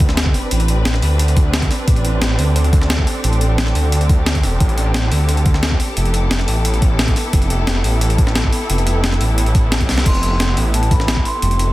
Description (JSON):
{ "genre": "liquid drum and bass", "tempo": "176 BPM", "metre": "4/4", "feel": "straight", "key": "A minor", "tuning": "A4 = 439 Hz", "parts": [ { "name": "rich studio string section", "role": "sustained chords", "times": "0.0-11.7 s", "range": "B3 to B4", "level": "-24 LUFS", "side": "equal", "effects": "sidechain pumping" }, { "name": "swelling detuned saw bass", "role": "bass", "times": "0.0-11.7 s", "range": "E1 to D2", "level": "-16 LUFS", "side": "equal", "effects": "none" }, { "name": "breakbeat sampler-style drum kit", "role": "drums", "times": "0.0-11.7 s", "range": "crash cymbal, hi-hat, snare drum", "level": "-21 LUFS", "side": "equal", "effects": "studio reverb" }, { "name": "electronic kick drum", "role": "drums", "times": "0.0-11.2 s", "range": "none", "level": "-16 LUFS", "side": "equal", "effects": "overdrive, studio reverb" }, { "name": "sub drop", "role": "sound effects", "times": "0.0-0.5 s", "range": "none", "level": "-31 LUFS", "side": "equal", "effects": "none" }, { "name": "vibraphone with soft mallets", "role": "melody", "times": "10.1-11.7 s", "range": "A5 to C6", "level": "-23 LUFS", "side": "equal", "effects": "none" } ], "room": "digital ambience", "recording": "dense, heavily limited modern master", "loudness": "-14 LUFS", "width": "side -17 dB against mid", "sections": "0.0-11.7 A section", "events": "impact 0.0-0.5; drum fill 9.9", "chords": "0.0 Am11; 6.0 Fmaj9#11" }